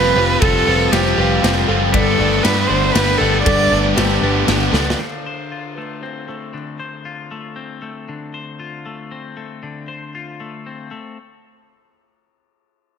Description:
post-rock; 117 BPM; 3/4; straight; D dorian; A4 = 442 Hz
clear cello; melody; 0.0-4.7 s; G4 to D5; -18 LUFS; right 2 dB; slapback echo
pedal steel guitar; sustained chords; 0.0-8.0 s; D3 to B5; -32 LUFS; right 2 dB
felt-muted upright piano; arpeggios; 0.0-6.5 s; A4 to D5; -28 LUFS; right 4 dB; slapback echo
twelve-string electric guitar; arpeggios; 0.0-11.2 s; D3 to C5; -27 LUFS; left 5 dB; slapback echo
biting overdriven guitar; riff; 0.0-5.0 s; G2 to F4; -21 LUFS; right 13 dB
overdriven electric guitar; riff; 0.0-5.0 s; G2 to F4; -21 LUFS; left 13 dB
picked electric bass; bass; 0.0-4.9 s; F1 to G2; -20 LUFS; equal
big rock drum kit; drums; 0.4-5.0 s; kick drum, ride cymbal, snare drum; -22 LUFS; left 1 dB
light reverb, studio ambience; -13 LUFS; side -7 dB against mid
0.0-5.0 A section; 5.0-11.2 B section
drum fill 4.7
0.0 Fsus2; 1.9 Gadd9; 5.0 Dm7

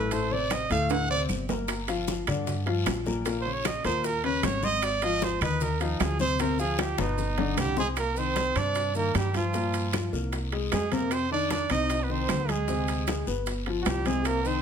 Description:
Afro-Cuban jazz; 153 BPM; 4/4; straight; C minor; A4 = 435 Hz
bright trumpet; melody; 0.0-14.6 s; Eb4 to F#5; -29 LUFS; right 5 dB
warm upright piano; accompaniment; 0.0-14.6 s; A2 to C6; -31 LUFS; left 6 dB
upright bass; bass; 0.0-14.6 s; G1 to G2; -31 LUFS; equal
congas; percussion; 0.1-14.6 s; -36 LUFS; left 1 dB
guiro; percussion; 0.1-14.6 s; -41 LUFS; left 6 dB
maracas; percussion; 0.1-14.6 s; -43 LUFS; right 5 dB
timbales; percussion; 0.1-14.4 s; -35 LUFS; right 9 dB
claves; percussion; 0.5-14.4 s; -41 LUFS; right 10 dB
bongos; percussion; 1.7-14.5 s; -38 LUFS; left 9 dB
bright trombone; second line; 7.6-14.6 s; F3 to Eb4; -34 LUFS; right 2 dB
light reverb; -25 LUFS; side -7 dB against mid
0.0-8.0 A section; 8.0-14.6 B section
trumpet solo 0.0-8.0; drum fill 0.9-1.7, 6.8-8.0
0.1 Amadd11; 0.9 D5; 1.7 Gm7; 3.3 Bbm; 4.0 Eb5; 4.8 Ab6; 6.4 G7b9b13; 7.2 G; 8.0 Cmadd9; 9.5 C7sus4; 10.3 Fmadd11/C; 11.1 Fm7; 12.7 Abmaj7#11; 13.5 G7

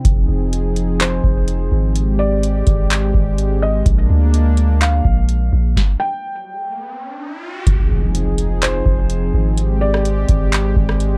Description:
hip hop, atmospheric cloud-rap; 126 BPM; 4/4; half-time; F dorian; A4 = 440 Hz
warm analog pad; sustained chords; 0.0-11.2 s; F3 to Ab4; -25 LUFS; equal; chorus, sidechain pumping
booming analog drum machine; drums; 0.0-11.1 s; handclaps, hi-hat, kick drum, rim click, snare drum; -18 LUFS; equal
long sustained 808-style bass; bass; 0.1-11.2 s; F1 to D2; -19 LUFS; equal
felt-muted upright piano; melody; 1.0-11.2 s; C5 to G5; -28 LUFS; equal; low-pass filter, tape echo
riser and impact; sound effects; 6.6-9.6 s; -32 LUFS; equal
little or no reverb; dark, warm production; -17 LUFS; mono
0.0-7.7 A section; 7.7-11.2 B section
stop 5.8-7.7; riser 6.6-7.7; impact 7.7-9.6
0.1 Fm7; 2.0 Abmaj7; 3.9 Bb7; 5.8 N.C.; 7.7 Fm7; 9.6 Abmaj7

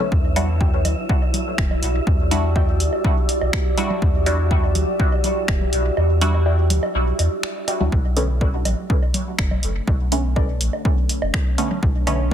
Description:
dub techno; 123 BPM; 4/4; straight; B minor; A4 = 439 Hz
deep dark ambient pad; sustained chords; 0.0-12.3 s; D4 to D5; -27 LUFS; right 1 dB; chorus, built-in reverb, sidechain pumping
filtered dub chord stab; stabs; 0.0-12.2 s; D3 to F#4; -26 LUFS; equal; chorus, phaser, sidechain pumping, dub echo
congas and woodblock; percussion; 0.0-12.2 s; -29 LUFS; right 1 dB; sidechain pumping on perc, dub echo
wind-like tuned noise texture; texture; 0.0-7.9 s; E4 to E5; -33 LUFS; right 1 dB; built-in reverb, sidechain pumping
warm sub bass; bass; 0.1-12.3 s; E1 to E2; -21 LUFS; equal; sidechain pumping
electronic kick drum; drums; 0.1-12.3 s; -20 LUFS; equal
punchy analog drum machine; drums; 0.4-12.2 s; finger snaps, hi-hat; -26 LUFS; equal; soft clipping on snare
warbly dusty pluck; riff; 0.6-12.3 s; C#4 to G5; -34 LUFS; left 3 dB; chorus, sidechain pumping, dub echo
light reverb, digital ambience; dense, heavily limited modern master; -17 LUFS; side -10 dB against mid
0.0-7.9 A section; 7.9-12.3 A section
kick drops out 6.0-7.9; filter sweep on synth stab 7.9-12.3
0.1 Em9; 7.9 Bm9

